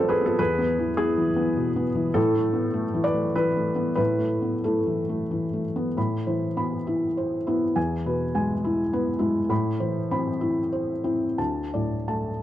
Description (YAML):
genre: neoclassical minimalist piano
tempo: 86-105 BPM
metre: 3/4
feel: rubato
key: A harmonic minor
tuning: A4 = 440 Hz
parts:
  - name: felt-muted upright piano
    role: solo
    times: 0.0-12.4 s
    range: D2 to B5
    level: -22 LUFS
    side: equal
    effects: none
room: light reverb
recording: dark, warm production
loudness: -22 LUFS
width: side -13 dB against mid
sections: 0.0-6.0 A section; 6.0-12.4 B section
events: none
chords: 0.4 E; 2.2 Asus2; 6.0 Amadd9; 7.8 E; 9.5 Amadd9; 11.4 D5